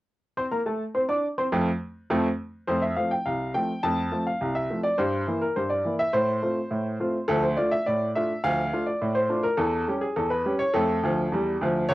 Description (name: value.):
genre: ragtime piano.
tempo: 104 BPM.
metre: 2/4.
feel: straight.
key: F major.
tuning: A4 = 440 Hz.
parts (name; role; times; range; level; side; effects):
clear upright piano; solo; 0.4-11.9 s; C2 to D6; -23 LUFS; equal; cassette tape.
room: wet booth ambience, RT60 0.2 s.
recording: home recording on cassette.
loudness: -23 LUFS.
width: side -17 dB against mid.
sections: 0.4-2.7 A section; 2.7-11.9 B section.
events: none.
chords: 0.4 F; 5.0 Edim/G; 6.1 F/A; 7.3 Dm; 9.6 C#dim/E; 10.7 Dm.